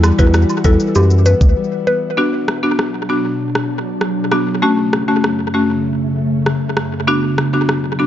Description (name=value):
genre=dancehall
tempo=98 BPM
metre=4/4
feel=straight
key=B minor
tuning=A4 = 440 Hz
part: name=buzzing marimba with hard mallets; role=accompaniment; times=0.0-8.1 s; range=G3 to F#4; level=-17 LUFS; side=left 1 dB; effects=none
part: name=ethereal airy pad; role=sustained chords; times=0.0-8.1 s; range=F#2 to F#5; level=-21 LUFS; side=equal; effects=ensemble chorus, built-in reverb, sidechain pumping
part: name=nylon-string guitar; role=arpeggios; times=0.0-2.7 s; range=E3 to F#4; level=-22 LUFS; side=left 6 dB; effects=tape echo
part: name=saturated sub bass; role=bass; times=0.0-1.5 s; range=D2 to F#2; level=-12 LUFS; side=equal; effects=none
part: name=island pop drum kit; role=drums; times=0.0-7.8 s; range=hi-hat, kick drum, rim click, shaker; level=-18 LUFS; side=equal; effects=tape echo
part: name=cabasa and woodblock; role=percussion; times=0.0-1.4 s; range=none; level=-27 LUFS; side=right 6 dB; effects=none
part: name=mallet-like synth pluck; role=melody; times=0.2-2.0 s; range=G4 to B4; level=-20 LUFS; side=left 1 dB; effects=chorus, tape echo
room=light reverb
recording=echo-heavy mix, nothing above 7.5 kHz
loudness=-13 LUFS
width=side -11 dB against mid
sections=0.0-2.2 A section; 2.2-8.1 B section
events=break 1.6-2.2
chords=0.0 Emadd9; 2.2 Bm; 4.6 F#m; 7.1 Bm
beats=0.34 0.95 1.57 | 2.18 2.79 3.40 4.01 | 4.63 5.24 5.85 6.46 | 7.08 7.69